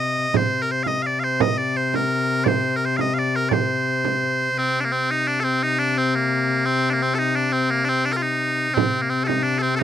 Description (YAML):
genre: medieval dance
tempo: 114 BPM (dotted quarters)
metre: 6/8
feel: straight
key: C minor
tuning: A4 = 438 Hz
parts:
  - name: loud bright bagpipes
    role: melody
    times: 0.0-9.8 s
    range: Bb3 to F5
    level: -21 LUFS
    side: equal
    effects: none
  - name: rich viola da gamba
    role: drone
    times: 0.0-9.8 s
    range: C3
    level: -25 LUFS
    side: left 5 dB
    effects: stereo widening
  - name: frame drum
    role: percussion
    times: 0.2-4.3, 8.8-9.5 s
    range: none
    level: -22 LUFS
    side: right 10 dB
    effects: none
room: light reverb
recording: dry, close 1970s-style studio recording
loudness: -19 LUFS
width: side -10 dB against mid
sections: 0.0-4.6 A section; 4.6-9.8 A section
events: none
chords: none